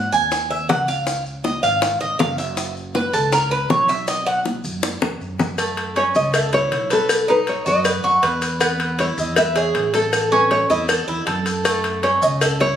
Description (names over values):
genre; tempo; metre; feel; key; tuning
latin, Cuban son and guajira; 159 BPM; 4/4; straight; unclear; A4 = 440 Hz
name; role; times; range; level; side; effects
Cuban tres; arpeggios; 0.0-12.8 s; A3 to G#5; -20 LUFS; right 2 dB; none
upright bass; bass; 0.0-12.8 s; F#1 to F#2; -27 LUFS; right 1 dB; none
maracas; percussion; 0.1-12.8 s; none; -32 LUFS; left 2 dB; none
bongos and cowbell; percussion; 0.3-12.8 s; none; -23 LUFS; left 2 dB; none
nylon-string guitar; melody; 6.0-12.8 s; A4 to E5; -19 LUFS; left 1 dB; none
room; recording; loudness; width
moderate large studio reverb, RT60 1.2 s; recorded on a phone in the room, studio ambience; -17 LUFS; side -10 dB against mid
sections
0.0-5.6 A section; 5.6-12.8 B section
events
Cuban tres solo 0.0-5.6; drum fill 4.8-5.6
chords
0.0 G#5; 1.1 C#; 2.6 F#5; 4.1 B5; 5.6 F#m7; 7.1 B; 8.6 E; 10.1 A; 11.6 F#m7